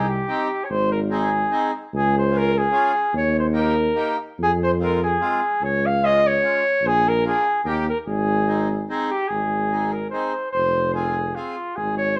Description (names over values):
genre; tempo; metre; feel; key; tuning
alpine folk, alpine dance band; 146 BPM; 3/4; swing 53% on 8ths, rubato; Ab major; A4 = 440 Hz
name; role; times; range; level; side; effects
warm flugelhorn; melody; 0.0-12.2 s; F4 to F5; -23 LUFS; equal; none
accordion; accompaniment; 0.0-11.6 s; Ab3 to Ab4; -30 LUFS; equal; none
mellow tuba; bass; 0.0-12.2 s; F1 to F2; -26 LUFS; equal; none
room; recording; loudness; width
moderate studio reverb, RT60 0.9 s; band playing live in one room; -21 LUFS; mono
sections
0.0-9.3 A section; 9.3-12.2 B section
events
none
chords
0.0 Cm; 0.7 Ab; 1.9 Db; 3.1 Eb; 4.4 Fm; 5.6 Db; 6.8 Bb7; 7.7 Eb; 8.1 Ab; 10.5 Fm